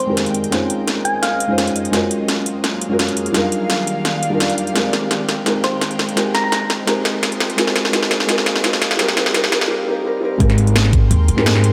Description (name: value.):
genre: liquid drum and bass.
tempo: 170 BPM.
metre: 4/4.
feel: straight.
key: Ab major.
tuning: A4 = 440 Hz.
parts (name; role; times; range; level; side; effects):
thumb-piano-like synth pluck; melody; 0.0-1.6, 5.6-6.5 s; C5 to Bb5; -25 LUFS; equal; chorus, tape echo.
felt-muted upright piano; accompaniment; 0.0-11.7 s; G3 to C5; -22 LUFS; equal; low-pass filter, digital delay.
ethereal airy pad; sustained chords; 0.0-11.7 s; F5; -28 LUFS; equal; ensemble chorus, built-in reverb, phaser, sidechain pumping.
drum and bass drum kit; drums; 0.2-11.7 s; hi-hat, snare drum; -22 LUFS; equal; high-pass filter on hats, high-pass filter on snare, high-pass filter on room.
upright bass; bass; 10.4-11.7 s; Ab1 to Ab2; -16 LUFS; equal; none.
electronic kick drum; drums; 10.4-11.0 s; none; -17 LUFS; equal; none.
room: moderate scoring stage reverb, RT60 1.9 s.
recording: high-pass filter.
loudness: -17 LUFS.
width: mono.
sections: 0.0-10.4 A section; 10.4-11.7 B section.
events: build-up 0.0-10.4; drum fill 0.0-9.7; filter sweep on felt piano 0.0-10.4; filter sweep on synth pluck 0.0-10.4; filter sweep 0.0-10.4; break 9.7-10.4; drop 10.4-11.7.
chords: 0.0 Abmaj9; 0.5 Dbmaj9; 1.9 Gbmaj9; 3.3 Ebmaj9; 4.8 Abmaj9; 6.2 Abmaj13; 7.6 Gbmaj9; 9.0 Ebmaj9; 10.4 Abmaj9.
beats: 0.17 | 0.52 0.87 1.23 1.58 | 1.93 2.29 2.64 2.99 | 3.35 3.70 4.05 4.40 | 4.76 5.11 5.46 5.82 | 6.17 6.52 6.87 7.23 | 7.58 7.93 8.29 8.64 | 8.99 9.35 9.70 10.05 | 10.40 10.76 11.11 11.46.